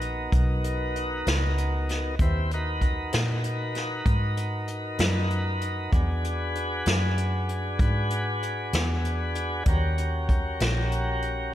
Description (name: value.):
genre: slow blues.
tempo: 64 BPM (dotted quarters).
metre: 12/8.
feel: straight.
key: G# minor.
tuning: A4 = 440 Hz.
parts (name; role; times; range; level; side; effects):
tonewheel organ; sustained chords; 0.0-11.5 s; B3 to B4; -30 LUFS; left 1 dB; slow rotary speaker.
vintage muted fingered electric bass; bass; 0.0-11.5 s; A#1 to A#2; -27 LUFS; equal; none.
vintage brush drum kit; drums; 0.0-11.4 s; hi-hat, kick drum, snare drum; -27 LUFS; equal; none.
room: light reverb, studio reverb.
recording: none.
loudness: -24 LUFS.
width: side -13 dB against mid.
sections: 0.0-11.5 A section.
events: none.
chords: 0.0 G#m7; 5.9 E7; 9.7 D#7#9.